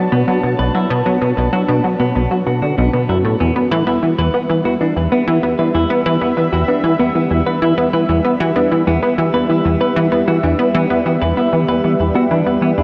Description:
ambient, sequencer-driven space music; 96 BPM; 4/4; straight; A4 = 443 Hz
sweeping resonant pad; sustained chords; 0.0-12.8 s; G3 to A5; -23 LUFS; equal; chorus, shimmer reverb
plucky analog bass; riff; 0.0-12.8 s; B1 to B3; -17 LUFS; equal; subtle chorus, tape echo, shimmer reverb
clean electric guitar; arpeggios; 0.1-12.8 s; B3 to B4; -24 LUFS; equal; tape echo, shimmer reverb
wet lush hall reverb, RT60 2.5 s; dreamy mix soaked in reverb; -16 LUFS; mono
0.0-12.8 A section
0.0 Bmadd9; 3.4 Em

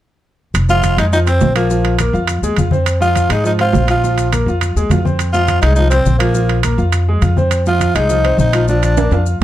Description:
latin, salsa; 206 BPM; 4/4; straight; A4 = 443 Hz
upright bass; bass; 0.5-9.4 s; F1 to Ab2; -15 LUFS; equal
congas; percussion; 0.5-9.4 s; -22 LUFS; left 2 dB
maracas; percussion; 0.5-9.4 s; -33 LUFS; left 8 dB
timbales; percussion; 0.5-9.4 s; -20 LUFS; right 8 dB
growling tenor saxophone; melody; 0.7-9.2 s; Bb3 to F4; -17 LUFS; equal; plate reverb
bright grand piano; accompaniment; 0.7-9.4 s; F3 to F5; -19 LUFS; equal
light reverb; dark, warm production; -12 LUFS; side -13 dB against mid
0.5-9.4 A section
drum fill 9.0-9.4
0.5 Fm; 1.7 Bb5; 2.9 Fm; 4.0 Bb5; 8.7 Bb

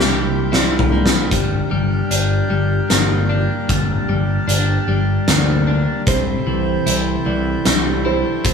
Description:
post-rock; 76 BPM; 3/4; straight; G dorian; A4 = 440 Hz
dark cello; melody; 0.0-0.5 s; G4; -26 LUFS; left 4 dB
hand-pumped harmonium; sustained chords; 0.0-8.5 s; D4 to A5; -26 LUFS; right 1 dB
twelve-string electric guitar; arpeggios; 0.0-8.5 s; G2 to G4; -22 LUFS; left 3 dB; spring reverb
growling fingered electric bass; bass; 0.0-8.5 s; G1 to D2; -20 LUFS; equal; overdrive
oversized low-tuned drum kit; drums; 0.0-8.5 s; hi-hat, kick drum, snare drum, toms; -18 LUFS; equal
felt-muted upright piano; arpeggios; 0.5-1.3, 6.1-8.5 s; C5 to E5; -26 LUFS; right 6 dB
moderate large studio reverb, RT60 1.2 s; band playing live in one room, small room reverb; -15 LUFS; side -6 dB against mid
0.0-1.3 A section; 1.3-8.5 B section
drum fill 0.0-1.3
0.0 C7; 1.3 Gm; 6.1 C6

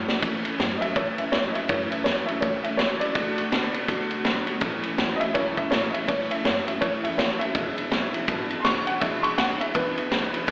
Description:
rockabilly; 164 BPM; 4/4; swing 61% on 8ths; A major; A4 = 445 Hz
picked steel-string acoustic guitar; accompaniment; 0.0-10.5 s; E2 to F#4; -31 LUFS; equal; slapback echo
electric guitar through a small old amp; riff; 0.0-10.5 s; E2 to B3; -32 LUFS; equal; wide subtle chorus, slapback echo
upright bass; bass; 0.0-10.5 s; E1 to D3; -38 LUFS; equal
vintage drum kit; drums; 0.1-10.5 s; kick drum, ride cymbal, snare drum; -26 LUFS; equal
dark upright piano; melody; 0.8-10.5 s; B4 to C#6; -27 LUFS; equal; slapback echo, analog delay
studio ambience; live gig heard through the venue's PA, recital hall reverb, AM radio sound; -22 LUFS; side -31 dB against mid
0.2-10.5 A section
drum fill 0.0
0.2 A; 3.1 D; 4.6 A; 7.5 E7

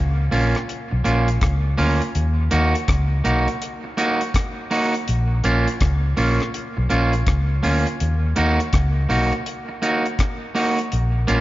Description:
roots reggae; 82 BPM; 4/4; swing 64% on 16ths; Eb minor; A4 = 440 Hz
vintage muted fingered electric bass; bass; 0.0-11.4 s; Bb1 to Eb2; -20 LUFS; equal
electric guitar at the edge of break-up; accompaniment; 0.3-11.4 s; Bb3 to Gb4; -22 LUFS; right 2 dB; dub echo
deep reggae drum kit; drums; 0.3-11.4 s; hi-hat, kick drum, rim click; -25 LUFS; equal
light reverb; nothing above 7.5 kHz; -18 LUFS; side -16 dB against mid
0.0-11.4 A section
0.0 Bbm; 2.1 Ebm; 5.1 Bbm; 8.0 Ebm

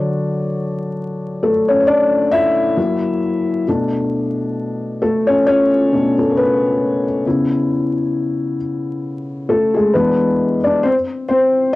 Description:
hip hop; 67 BPM; 4/4; swing 58% on 16ths; B dorian; A4 = 440 Hz
felt-muted upright piano; solo; 0.0-11.8 s; B2 to E5; -15 LUFS; left 1 dB; cassette tape
wet booth ambience, RT60 0.2 s; home recording on cassette, vinyl crackle; -15 LUFS; side -18 dB against mid
0.0-11.8 A section
felt piano solo 0.0-11.8
0.0 Dmaj7; 2.8 F#7; 3.7 Bm9; 7.2 C#m7; 9.9 E7; 10.8 N.C.

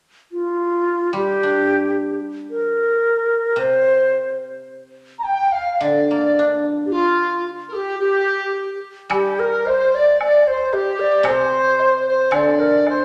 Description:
chinese traditional, Chinese chamber ensemble; 110 BPM; 2/4; rubato; G yu mode; A4 = 440 Hz
bright xiao; melody; 0.3-13.0 s; F4 to G5; -20 LUFS; equal
guzheng; accompaniment; 1.1-13.0 s; C3 to D4; -26 LUFS; equal
mellow large dizi; second line; 5.2-13.0 s; F4 to Bb5; -24 LUFS; equal
woodblock; percussion; 9.1-13.0 s; -30 LUFS; equal
wet recital hall reverb, RT60 1.8 s; -18 LUFS; mono
0.3-9.1 A section; 9.1-13.0 B section

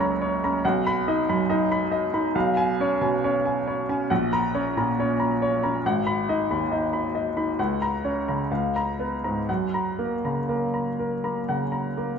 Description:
classical, romantic character piece for solo piano; 60-70 BPM; 4/4; rubato; F# major; A4 = 445 Hz
clear baby grand piano; solo; 0.0-12.2 s; F#1 to B5; -22 LUFS; equal
wet recital hall reverb, RT60 1.4 s; minimal, uncompressed stereo recording; -22 LUFS; side -6 dB against mid
0.0-12.2 A section
0.0 F#; 0.6 B; 2.3 C#7/B; 4.1 F#/A#; 5.8 G#m7; 7.6 F#/C#; 8.5 C#6; 9.5 F#

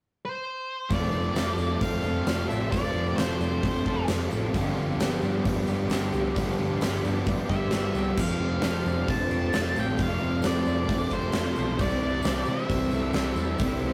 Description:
rock, shoegaze and dream pop; 132 BPM; 4/4; straight; F lydian; A4 = 438 Hz
octave-fuzz lead guitar; melody; 0.3-4.0, 7.5-13.9 s; C5 to A5; -35 LUFS; equal; distortion
analog string pad; sustained chords; 0.9-13.9 s; F4 to C6; -45 LUFS; equal
fingerpicked twelve-string acoustic guitar; arpeggios; 0.9-13.9 s; F3 to A4; -36 LUFS; equal
crunchy overdriven guitar; riff; 0.9-13.9 s; F2 to G4; -34 LUFS; equal
crunchy overdriven guitar; riff; 0.9-13.9 s; F2 to E4; -40 LUFS; equal
thick fuzz guitar; riff; 0.9-13.9 s; F2 to C4; -36 LUFS; equal
hollow-body short-scale fingered electric bass; bass; 0.9-13.9 s; F1 to C3; -35 LUFS; equal
huge arena drum kit; drums; 0.9-13.7 s; crash cymbal, hi-hat, kick drum, snare drum; -32 LUFS; equal
tambourine; percussion; 0.9-13.9 s; -54 LUFS; equal
moderate studio reverb, RT60 0.6 s; rough rehearsal-room recording, warm saturation; -27 LUFS; mono
0.9-13.9 A section
0.0 N.C.; 0.9 F6; 4.5 G7sus4; 8.2 F6; 11.8 C6

